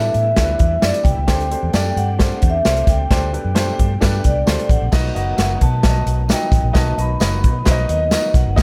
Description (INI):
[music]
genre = uptempo 1960s-style soul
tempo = 132 BPM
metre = 4/4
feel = straight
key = unclear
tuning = A4 = 442 Hz
[part]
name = vibraphone with soft mallets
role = melody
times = 0.0-8.6 s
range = D5 to B5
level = -24 LUFS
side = equal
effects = none
[part]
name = clear upright piano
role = accompaniment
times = 0.0-8.6 s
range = F#3 to F#5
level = -28 LUFS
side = equal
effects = none
[part]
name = overdriven tonewheel organ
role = sustained chords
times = 0.0-8.6 s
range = B2 to G4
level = -34 LUFS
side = equal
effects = none
[part]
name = vintage muted fingered electric bass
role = bass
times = 0.0-8.6 s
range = F#1 to B2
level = -22 LUFS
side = equal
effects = none
[part]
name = swinging big-band drum kit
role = drums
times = 0.1-8.6 s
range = crash cymbal, hi-hat, kick drum, snare drum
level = -20 LUFS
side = equal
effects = none
[part]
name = tambourine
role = percussion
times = 0.4-8.6 s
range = none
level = -37 LUFS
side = equal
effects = none
[sound]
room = light reverb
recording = none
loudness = -17 LUFS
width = mono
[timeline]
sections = 0.0-4.9 A section; 4.9-8.6 B section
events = none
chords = 0.0 Em7; 1.3 D7sus4; 4.9 B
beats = 0.37 0.83 | 1.28 1.74 2.19 2.65 | 3.10 3.56 4.01 4.47 | 4.93 5.38 5.84 6.30 | 6.75 7.21 7.67 8.12 | 8.58